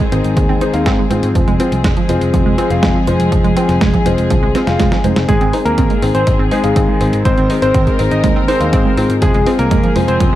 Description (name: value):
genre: italo disco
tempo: 122 BPM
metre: 4/4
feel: straight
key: Ab major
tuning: A4 = 438 Hz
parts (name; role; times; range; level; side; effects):
- warm studio string section; sustained chords; 0.0-10.4 s; Eb3 to Bb4; -20 LUFS; left 1 dB; low-pass filter
- analog pluck; arpeggios; 0.0-10.4 s; F3 to Eb4; -21 LUFS; right 6 dB; chorus, tape echo
- detuned 8-bit digital drum machine; drums; 0.0-10.3 s; hi-hat, snare drum, toms; -24 LUFS; equal; high-pass filter on hats, studio reverb, high-pass filter on snare, high-pass filter on toms
- electronic kick drum; drums; 0.0-10.3 s; none; -16 LUFS; equal; studio reverb
- warm concert grand piano; stabs; 0.1-10.4 s; C4 to F5; -19 LUFS; left 4 dB; low-pass filter, tape echo
- picked electric bass; bass; 0.1-10.4 s; F1 to Ab2; -18 LUFS; equal; none
- warm electric grand piano; melody; 5.3-10.3 s; Ab3 to Eb5; -17 LUFS; left 1 dB; tape echo
room: light reverb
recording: dry, gritty hardware recording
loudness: -11 LUFS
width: side -13 dB against mid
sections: 0.0-5.3 A section; 5.3-10.4 B section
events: drum fill 4.5-5.3, 5.3-10.4; filter sweep on grand piano 5.3-10.4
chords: 0.0 Ab; 1.4 Fm; 5.3 Ab; 9.2 Fm